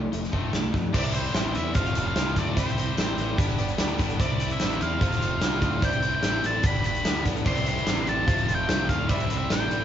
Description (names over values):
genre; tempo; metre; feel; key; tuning
classic rock; 147 BPM; 4/4; straight; unclear; A4 = 440 Hz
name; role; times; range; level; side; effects
distorted electric guitar; riff; 0.0-9.8 s; G2 to F4; -35 LUFS; right 7 dB; distortion
tight distorted guitar; riff; 0.0-9.8 s; F2 to G4; -32 LUFS; left 6 dB; distortion
growling fingered electric bass; bass; 0.0-9.8 s; F1 to F2; -32 LUFS; equal; overdrive
big rock drum kit; drums; 0.1-9.8 s; crash cymbal, hi-hat, kick drum, snare drum; -26 LUFS; equal; none
octave-fuzz lead guitar; melody; 0.9-9.8 s; C5 to C6; -29 LUFS; equal; distortion
bright upright piano; accompaniment; 0.9-9.8 s; E4 to E5; -37 LUFS; right 6 dB; none
tambourine; percussion; 1.0-9.8 s; none; -46 LUFS; right 8 dB; none
crunchy overdriven guitar; riff; 7.4-9.8 s; C3 to F4; -34 LUFS; equal; none
room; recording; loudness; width
light reverb; band playing live in one room, nothing above 7.5 kHz; -22 LUFS; side -10 dB against mid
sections
0.9-9.8 A section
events
none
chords
0.0 F; 0.9 Cadd9; 1.8 F; 2.6 Cadd9; 3.4 G; 4.2 Cadd9; 5.0 F; 5.8 Cadd9; 6.6 G; 7.5 Cadd9; 8.3 F; 9.1 Cadd9